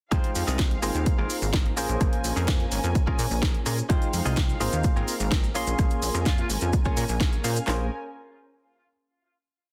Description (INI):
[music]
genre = filtered disco house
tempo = 127 BPM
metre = 4/4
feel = straight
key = Bb dorian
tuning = A4 = 440 Hz
[part]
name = barky tine electric piano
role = accompaniment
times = 0.1-7.9 s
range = Ab3 to C6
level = -35 LUFS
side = equal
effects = phaser, vintage 12-bit sampler grit, sidechain pumping
[part]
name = muted studio violin section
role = sustained chords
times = 0.1-7.9 s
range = Ab3 to Ab5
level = -39 LUFS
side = equal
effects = vintage 12-bit sampler grit, sidechain pumping
[part]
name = direct-recorded clean electric guitar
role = riff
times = 0.1-7.9 s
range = C4 to F5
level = -37 LUFS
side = equal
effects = subtle chorus, sidechain pumping
[part]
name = plucky analog bass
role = bass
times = 0.1-7.9 s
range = Ab1 to Bb2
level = -31 LUFS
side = equal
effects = sidechain pumping
[part]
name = house drum kit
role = drums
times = 0.1-7.8 s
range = handclaps, kick drum, snare drum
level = -26 LUFS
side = equal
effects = overdrive, studio ambience
[part]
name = house drum kit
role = drums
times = 0.1-7.7 s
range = hi-hat, rim click, shaker, snare drum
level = -34 LUFS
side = equal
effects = overdrive, studio ambience, sidechain pumping on hats, sidechain pumping on perc
[part]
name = maracas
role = percussion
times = 3.9-7.7 s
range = none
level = -43 LUFS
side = equal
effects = sidechain pumping on perc
[part]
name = mellow horn section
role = melody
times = 6.3-6.5 s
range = F4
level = -40 LUFS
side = equal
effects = sidechain pumping, tape echo
[sound]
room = light reverb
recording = dense, heavily limited modern master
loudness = -25 LUFS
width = mono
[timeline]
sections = 0.1-7.7 drop; 7.7-9.6 final chord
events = drop 0.1-7.7; clean electric guitar fill 7.0-7.7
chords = 0.1 Fm7; 0.8 Ab69; 1.8 Bbm7; 3.9 Fm7; 4.6 Ab69; 5.6 Bbm7